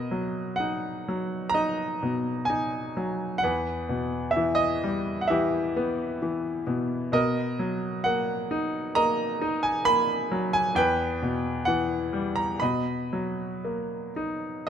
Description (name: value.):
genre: classical, lyrical solo piano.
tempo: 56-67 BPM.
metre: 4/4.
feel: rubato.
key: B major.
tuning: A4 = 440 Hz.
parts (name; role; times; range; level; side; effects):
bright grand piano; solo; 0.0-14.7 s; E2 to B5; -25 LUFS; equal; none.
room: light reverb.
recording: close, detailed microphones.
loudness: -25 LUFS.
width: side -8 dB against mid.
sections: 0.0-14.7 A section.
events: none.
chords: 0.0 Bmaj7; 3.4 Emadd9; 7.1 Bmaj7; 10.8 Em; 12.6 Bmaj7.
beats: 0.59 1.55 2.49 | 3.42 4.36 5.29 6.21 | 7.12 8.04 8.96 9.86 | 10.76 11.67 12.61 13.63 | 14.66.